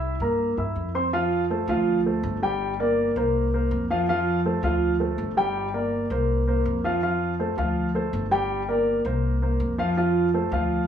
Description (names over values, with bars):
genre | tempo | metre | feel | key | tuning
latin, salsa | 163 BPM | 4/4 | straight | F major | A4 = 440 Hz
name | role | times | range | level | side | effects
dark baby grand piano | accompaniment | 0.0-10.8 s | F3 to E6 | -23 LUFS | equal | none
upright bass | bass | 0.0-10.9 s | G1 to G2 | -28 LUFS | left 1 dB | none
room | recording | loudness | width
moderate large studio reverb, RT60 1.2 s | small room reverb | -22 LUFS | side -8 dB against mid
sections
0.0-1.1 A section; 1.1-10.9 B section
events
none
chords
0.0 C7; 1.1 F; 1.9 Dm7; 2.6 Gm; 3.3 C7sus4; 4.1 F; 4.8 Dm7; 5.6 Gm; 6.3 C7sus4; 7.0 F; 7.8 Dm7; 8.5 Gm; 9.2 C7sus4; 10.0 F